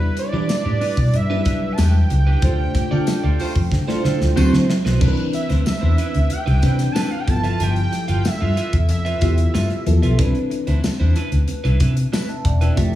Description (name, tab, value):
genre	polished 1980s jazz-funk pop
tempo	93 BPM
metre	4/4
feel	straight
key	C major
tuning	A4 = 439 Hz
part	fat analog lead	melody	0.0-9.8 s	B4 to A5	-27 LUFS	right 3 dB	tape echo
part	FM electric piano with soft pad layer	accompaniment	0.0-13.0 s	E3 to A5	-24 LUFS	equal	phaser, wide subtle chorus
part	electric guitar at the edge of break-up	riff	0.0-13.0 s	C4 to F5	-29 LUFS	right 4 dB	lush chorus
part	vintage muted fingered electric bass	bass	0.0-13.0 s	E1 to E3	-17 LUFS	equal	none
part	modern studio drum kit	drums	0.2-13.0 s	crash cymbal, hi-hat, kick drum, snare drum	-23 LUFS	equal	none
part	tambourine	percussion	0.5-12.3 s	none	-39 LUFS	left 6 dB	none
part	warm horn section	second line	3.4-4.6 s	A3 to C5	-31 LUFS	left 1 dB	none
room	light reverb, small room ambience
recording	none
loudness	-16 LUFS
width	side -14 dB against mid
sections	0.0-5.0 A section; 5.0-13.0 B section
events	band accent 2.4-5.0; drum fill 3.7-5.0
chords	0.0 Em7; 2.4 Dm7; 4.4 D13; 5.0 Cmaj9; 7.3 G13; 10.2 Cmaj9